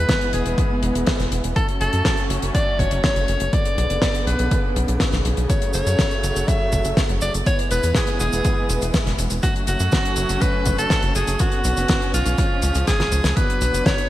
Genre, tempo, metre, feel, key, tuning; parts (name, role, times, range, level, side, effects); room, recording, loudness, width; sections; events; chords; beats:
italo disco; 122 BPM; 4/4; straight; F# minor; A4 = 442 Hz
breathy alto saxophone; melody; 0.0-14.1 s; E#4 to E5; -24 LUFS; equal; digital delay
dark studio string section; sustained chords; 0.0-14.1 s; C#3 to D4; -26 LUFS; right 1 dB
tight sequencer bass; bass; 0.0-13.8 s; E1 to F#2; -22 LUFS; equal
damped 70s drum kit; drums; 0.1-14.1 s; cabasa, hi-hat, snare drum; -25 LUFS; left 1 dB
electronic kick drum; drums; 0.1-14.0 s; -22 LUFS; equal
moderate lush hall reverb, RT60 1.9 s, studio reverb; bright 1980s-style digital production, vinyl crackle; -18 LUFS; side -14 dB against mid
0.0-13.4 A section
drum fill 12.9-13.4
0.0 E; 1.6 F#m; 3.5 Bmadd9; 5.5 F#m; 7.5 E; 9.4 F#m; 11.4 Bmadd9; 12.4 C#; 13.4 Bm
0.09 0.58 1.07 | 1.56 2.05 2.55 3.04 | 3.53 4.02 4.51 5.00 | 5.50 5.99 6.48 6.97 | 7.46 7.96 8.45 8.94 | 9.43 9.92 10.41 10.91 | 11.40 11.89 12.38 12.87 | 13.37 13.86